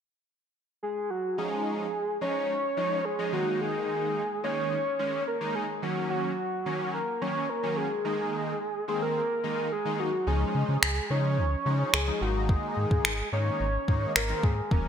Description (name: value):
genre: dance-pop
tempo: 108 BPM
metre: 4/4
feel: straight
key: Db major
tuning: A4 = 440 Hz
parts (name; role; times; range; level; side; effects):
- soft octave-layered synth lead; melody; 0.8-14.9 s; Gb4 to Db5; -29 LUFS; equal; chorus, ping-pong delay
- big bright polysynth; accompaniment; 1.4-14.9 s; Eb3 to Eb4; -33 LUFS; equal; analog chorus, sidechain pumping
- sub bass with octave; bass; 10.3-14.9 s; Eb1 to Db3; -28 LUFS; equal; sidechain pumping
- smooth R&B drum kit; drums; 10.8-14.8 s; finger snaps, kick drum; -25 LUFS; equal; gated reverb
room: moderate lush hall reverb, RT60 1.7 s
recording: bright 1980s-style digital production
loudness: -26 LUFS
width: side -8 dB against mid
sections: 0.0-1.4 A section; 1.4-14.9 B section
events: none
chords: 0.0 N.C.; 1.4 Dbadd9; 3.3 Absus2; 5.8 Ebm7; 8.0 Absus2/Eb; 10.3 Dbadd9; 12.2 Absus2